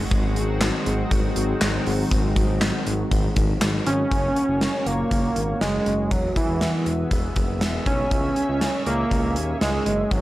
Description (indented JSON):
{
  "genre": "synth-pop",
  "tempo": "120 BPM",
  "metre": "4/4",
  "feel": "straight",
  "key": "F# mixolydian",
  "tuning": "A4 = 440 Hz",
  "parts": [
    { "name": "lush unison pad", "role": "sustained chords", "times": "0.0-10.2 s", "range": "D#3 to G#5", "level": "-28 LUFS", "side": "left 1 dB", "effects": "chorus" },
    { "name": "smooth gliding synth bass", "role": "bass", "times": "0.0-10.2 s", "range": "E1 to D#2", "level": "-26 LUFS", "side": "equal", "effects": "none" },
    { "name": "gated 80s drum kit", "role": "drums", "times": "0.1-10.2 s", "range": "handclaps, hi-hat, kick drum, snare drum", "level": "-24 LUFS", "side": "equal", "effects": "none" },
    { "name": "fat analog lead", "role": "melody", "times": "3.9-10.2 s", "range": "E3 to C#4", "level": "-23 LUFS", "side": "right 1 dB", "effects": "chorus" }
  ],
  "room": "light reverb, studio ambience",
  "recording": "none",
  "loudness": "-20 LUFS",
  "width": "side -16 dB against mid",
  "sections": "0.0-4.1 A section; 4.1-10.2 B section",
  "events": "none",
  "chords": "0.1 G#7; 4.1 F#; 6.1 Eadd9; 8.1 C#m"
}